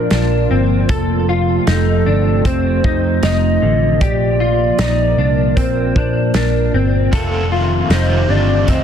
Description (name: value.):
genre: dream pop.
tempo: 77 BPM.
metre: 4/4.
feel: straight.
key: F mixolydian.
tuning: A4 = 442 Hz.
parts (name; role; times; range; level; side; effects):
warbly nostalgic lead; melody; 0.0-8.8 s; A4 to Eb5; -21 LUFS; right 1 dB; chorus, ping-pong delay.
warbly tape-like pad; sustained chords; 0.0-8.8 s; Bb2 to Bb4; -19 LUFS; right 2 dB; chorus, built-in reverb.
semi-hollow electric guitar; arpeggios; 0.0-8.8 s; D3 to A4; -20 LUFS; left 4 dB; ensemble chorus, ping-pong delay.
vintage muted picked electric bass; bass; 0.0-8.8 s; F1 to Bb2; -17 LUFS; equal; none.
loose indie drum kit; drums; 0.1-8.8 s; hi-hat, kick drum, snare drum; -19 LUFS; equal; none.
overdriven semi-hollow guitar; accompaniment; 7.1-8.8 s; F2 to F4; -22 LUFS; right 1 dB; tremolo, analog chorus.
backwards swelling texture; texture; 8.1-8.8 s; G4; -29 LUFS; equal; built-in reverb, ping-pong delay.
room: light reverb.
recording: dense, heavily limited modern master.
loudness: -13 LUFS.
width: side -8 dB against mid.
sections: 0.0-8.8 A section.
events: none.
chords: 0.0 Bb; 0.9 F7; 4.0 Bb; 7.1 F7.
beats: 0.12 | 0.90 1.68 2.46 3.23 | 4.01 4.79 5.57 6.35 | 7.13 7.91 8.69.